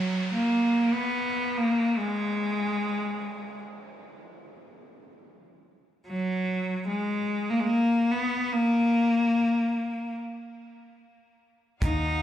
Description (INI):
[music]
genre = pop ballad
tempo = free time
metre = none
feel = none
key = Eb minor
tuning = A4 = 440 Hz
[part]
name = rich cello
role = melody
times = 0.0-12.2 s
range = Gb3 to Eb4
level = -25 LUFS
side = equal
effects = slapback echo
[part]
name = downlifter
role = sound effects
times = 0.0-5.2 s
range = none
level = -39 LUFS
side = right 1 dB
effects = slapback echo
[part]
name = dark upright piano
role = accompaniment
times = 11.8-12.2 s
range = Eb3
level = -37 LUFS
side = equal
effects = slapback echo
[part]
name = rich studio string section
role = sustained chords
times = 11.8-12.2 s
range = Eb4 to F5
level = -42 LUFS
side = left 2 dB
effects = none
[part]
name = saturated sub bass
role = bass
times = 11.8-12.2 s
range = Eb2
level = -29 LUFS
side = equal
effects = none
[part]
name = damped 70s drum kit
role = drums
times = 11.8-12.0 s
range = hi-hat, kick drum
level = -26 LUFS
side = equal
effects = none
[sound]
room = light reverb, small room ambience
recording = live gig heard through the venue's PA, club reverb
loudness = -24 LUFS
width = side -11 dB against mid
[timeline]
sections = 0.0-12.2 A section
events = none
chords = none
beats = free time